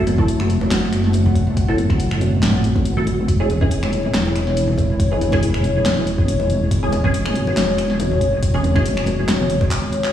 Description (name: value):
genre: deep dubstep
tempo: 140 BPM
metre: 4/4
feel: swing 54% on 16ths, half-time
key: unclear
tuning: A4 = 440 Hz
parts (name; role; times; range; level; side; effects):
- dark analog pad; sustained chords; 0.0-10.1 s; G#3 to F#5; -22 LUFS; equal; chorus
- filtered dub chord stab; stabs; 0.0-8.8 s; E3 to A4; -26 LUFS; right 2 dB; phaser, ensemble chorus, dub echo
- deep soft wobble bass; bass; 0.0-9.7 s; E1 to G#1; -20 LUFS; equal; chorus
- deep house drum kit; drums; 0.1-10.1 s; finger snaps, handclaps, hi-hat, snare drum; -24 LUFS; left 1 dB; overdrive
- congas; percussion; 0.1-10.0 s; none; -25 LUFS; left 1 dB; dub echo
- electronic kick drum; drums; 0.2-9.7 s; none; -20 LUFS; equal; overdrive
room: light reverb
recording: played on a big sound system in a bare room, stone room reverb, small room ambience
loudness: -16 LUFS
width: side -11 dB against mid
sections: 0.0-10.1 A section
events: drop 0.0-10.1; break 9.7-10.1; drum fill 9.7-10.1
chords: 0.0 F#m7; 3.3 E6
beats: 0.28 0.71 1.14 | 1.57 2.00 2.43 2.85 | 3.28 3.71 4.14 4.57 | 5.00 5.43 5.86 6.28 | 6.71 7.14 7.57 8.00 | 8.43 8.86 9.28 9.71